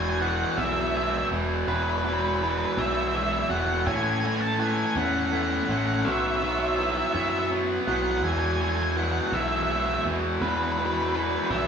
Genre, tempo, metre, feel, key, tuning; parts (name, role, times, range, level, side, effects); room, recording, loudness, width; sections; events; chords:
post-rock; 55 BPM (dotted quarters); 6/8; straight; E major; A4 = 440 Hz
octave-fuzz lead guitar; melody; 0.0-11.7 s; B4 to A5; -28 LUFS; equal; distortion
pedal steel guitar; sustained chords; 0.0-11.7 s; F#3 to E5; -41 LUFS; equal
electric guitar through a small old amp; arpeggios; 0.0-11.7 s; E2 to E4; -33 LUFS; left 2 dB
glockenspiel with rubber mallets; arpeggios; 0.0-11.7 s; E6 to G#6; -37 LUFS; right 3 dB
distorted electric guitar; riff; 0.0-11.7 s; E2 to B3; -30 LUFS; right 4 dB; distortion
tight distorted guitar; riff; 0.0-11.7 s; E2 to B3; -31 LUFS; left 5 dB; distortion
growling fingered electric bass; bass; 0.0-11.7 s; E1 to F#2; -30 LUFS; equal; overdrive
wet large studio reverb, RT60 1.3 s; band playing live in one room, small room ambience; -23 LUFS; side -7 dB against mid
0.0-11.7 A section
0.0 E; 3.9 A; 6.1 Bsus4